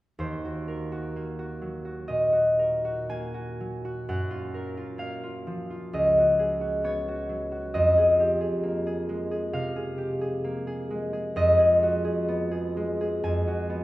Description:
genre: classical, solo harp piece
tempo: 58-68 BPM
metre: 4/4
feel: rubato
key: Eb dorian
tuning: A4 = 441 Hz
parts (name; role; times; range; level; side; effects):
- concert harp; solo; 0.2-13.8 s; Db2 to Ab5; -24 LUFS; equal; none
room: wet recital hall reverb, RT60 1.9 s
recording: heard from further back in the room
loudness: -24 LUFS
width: side -17 dB against mid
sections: 0.2-13.8 A section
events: none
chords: 0.2 Ebm6; 4.1 Gbmaj7; 5.9 Db9sus4; 7.7 Fm11; 11.4 Abm9/F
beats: | 0.19 1.14 2.10 3.11 | 4.08 5.01 5.92 6.83 | 7.74 8.64 9.54 10.46 | 11.39 12.30 13.26

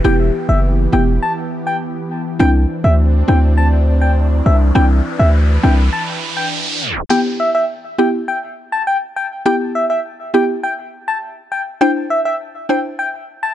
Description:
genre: dancehall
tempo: 102 BPM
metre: 4/4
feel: straight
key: E minor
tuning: A4 = 441 Hz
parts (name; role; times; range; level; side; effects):
- soft struck synth lead; melody; 0.0-13.5 s; E5 to A5; -19 LUFS; left 1 dB; chorus, dub echo
- mallet-like synth pluck; accompaniment; 0.0-12.9 s; B3 to C5; -17 LUFS; left 1 dB; chorus, phaser
- lush unison pad; sustained chords; 0.0-7.1 s; E3 to B4; -23 LUFS; equal; chorus, phaser
- hard-hitting 808-style bass; bass; 0.0-5.9 s; E1 to D2; -12 LUFS; equal; none
- downlifter and riser; sound effects; 0.0-7.1 s; none; -26 LUFS; right 2 dB; none
room: little or no reverb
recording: echo-heavy mix, tape stop, nothing above 10.5 kHz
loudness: -14 LUFS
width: side -12 dB against mid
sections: 0.0-7.1 A section; 7.1-13.5 B section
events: riser 3.9-7.1; tape stop 6.8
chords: 0.0 Em; 2.4 Cadd9; 7.1 Em; 11.8 Cadd9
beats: | 0.05 0.64 1.22 1.81 | 2.40 2.99 3.58 4.17 | 4.75 5.34 5.93 6.52 | 7.11 7.69 8.28 8.87 | 9.46 10.05 10.64 11.22 | 11.81 12.40 12.99

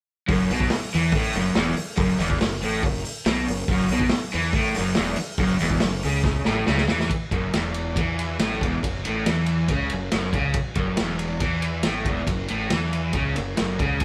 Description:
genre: garage rock duo or trio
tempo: 140 BPM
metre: 4/4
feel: straight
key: unclear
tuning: A4 = 440 Hz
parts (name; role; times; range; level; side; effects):
- crunchy overdriven guitar; riff; 0.3-14.0 s; E2 to E3; -27 LUFS; equal; spring reverb
- fuzz fingered electric bass; bass; 0.3-14.0 s; E1 to E2; -31 LUFS; equal; overdrive
- vintage drum kit; drums; 0.3-14.0 s; hi-hat, kick drum, ride cymbal, snare drum; -28 LUFS; equal; none
room: moderate studio reverb, RT60 0.6 s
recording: band playing live in one room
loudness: -24 LUFS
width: mono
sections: 0.3-7.1 A section; 7.1-14.0 B section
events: drum fill 6.2-7.1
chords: 0.3 F#5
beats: | 0.30 0.72 1.14 1.57 | 1.99 2.42 2.84 3.27 | 3.69 4.12 4.54 4.97 | 5.39 5.82 6.25 6.68 | 7.11 7.54 7.97 8.40 | 8.83 9.26 9.70 10.13 | 10.56 10.99 11.43 11.86 | 12.29 12.73 13.16 13.60 | 14.03

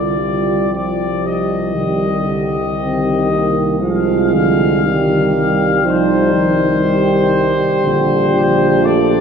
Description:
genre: classical, hymn-like piece for brass band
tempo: 56-62 BPM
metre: 3/4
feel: rubato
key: C minor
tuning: A4 = 440 Hz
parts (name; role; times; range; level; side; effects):
- warm trumpet section; melody; 0.0-9.2 s; C5 to F5; -20 LUFS; left 6 dB; none
- dark French horn section; second line; 0.0-9.2 s; Eb4 to G4; -19 LUFS; right 4 dB; none
- mellow trombone; accompaniment; 0.0-9.2 s; D3 to G3; -19 LUFS; right 2 dB; none
- warm euphonium; accompaniment; 0.0-9.2 s; G3 to C4; -21 LUFS; left 3 dB; none
- mellow tuba; bass; 0.0-9.2 s; Bb1 to C2; -20 LUFS; equal; none
room: wet church reverb, RT60 2.8 s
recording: heard from further back in the room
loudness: -13 LUFS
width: side -6 dB against mid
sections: 0.0-9.2 A section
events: none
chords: 0.0 G5/C; 1.8 Cm; 3.8 Fm6/C; 4.8 Cm; 7.8 Gm/Bb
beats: 0.71 | 1.76 2.78 3.83 | 4.84 5.84 6.85 | 7.85 8.84

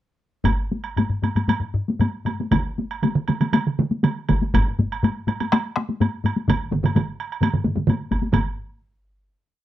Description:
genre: japanese traditional, taiko drum ensemble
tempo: 115-138 BPM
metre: 4/4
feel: straight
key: none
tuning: none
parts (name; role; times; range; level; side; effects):
- taiko ensemble; percussion; 0.4-8.6 s; none; -23 LUFS; left 2 dB; none
- taiko ensemble; percussion; 0.4-8.8 s; none; -24 LUFS; left 2 dB; none
- taiko ensemble; percussion; 0.4-8.6 s; none; -25 LUFS; equal; none
- woodblock; percussion; 0.5-8.5 s; none; -29 LUFS; right 8 dB; none
- taiko ensemble; percussion; 2.5-8.8 s; none; -23 LUFS; right 4 dB; none
room: light reverb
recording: dry, close 1970s-style studio recording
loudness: -20 LUFS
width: side -13 dB against mid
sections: 0.4-8.3 A section; 8.3-9.6 final hit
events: speeding up 0.4-9.6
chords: none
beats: | 0.45 0.97 1.49 2.00 | 2.52 3.03 3.54 4.04 | 4.54 5.03 5.52 6.01 | 6.49 6.96 7.42 7.89 | 8.34

